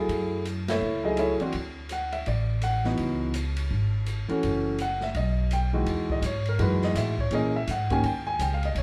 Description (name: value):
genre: jazz piano trio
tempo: 166 BPM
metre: 4/4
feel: swing 64% on 8ths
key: unclear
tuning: A4 = 442 Hz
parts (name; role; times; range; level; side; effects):
- warm grand piano; melody; 0.0-8.8 s; D#3 to G#5; -30 LUFS; equal; none
- upright bass; bass; 0.0-8.8 s; F#1 to A#2; -30 LUFS; equal; none
- open jazz drum kit; drums; 0.1-8.8 s; hi-hat, kick drum, ride cymbal, snare drum; -39 LUFS; equal; none
room: moderate large studio reverb, RT60 0.9 s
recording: band playing live in one room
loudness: -27 LUFS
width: mono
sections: 0.0-5.9 A section; 5.9-8.8 B section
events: band accent 0.6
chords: 0.1 F#m9; 1.5 D; 3.0 C#m11; 4.4 F#m7; 5.1 B; 5.9 Emaj9; 7.3 A#m7b5; 8.0 C#sus2